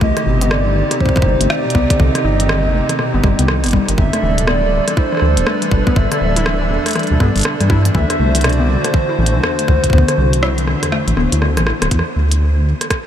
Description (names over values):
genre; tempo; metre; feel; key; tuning
IDM; 121 BPM; 4/4; swing 62% on 16ths; unclear; A4 = 440 Hz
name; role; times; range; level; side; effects
warbly nostalgic lead; melody; 0.0-11.4 s; B4 to E5; -22 LUFS; right 1 dB; wide subtle chorus, tape echo
hollow soft pad; sustained chords; 0.0-11.9 s; C3 to D5; -22 LUFS; right 1 dB; chorus
warbly dusty pluck; arpeggios; 0.0-11.9 s; Eb2 to E4; -21 LUFS; left 4 dB; chorus, cassette tape, ping-pong delay
dark detuned saw bass; bass; 0.0-12.7 s; D1 to G2; -16 LUFS; equal; none
electronic kick drum; drums; 0.0-13.0 s; none; -15 LUFS; equal; none
glitchy drum kit; drums; 0.2-13.0 s; hi-hat, rim click; -21 LUFS; equal; tape echo
room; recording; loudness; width
moderate huge ambient reverb, RT60 8.4 s; dreamy mix soaked in reverb; -12 LUFS; side -10 dB against mid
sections
0.0-11.9 A section; 11.9-13.1 B section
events
kick drops out 10.9-11.9; drum fill 11.4-11.9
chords
0.0 Cm; 4.0 Gadd9; 7.9 D7; 11.9 N.C.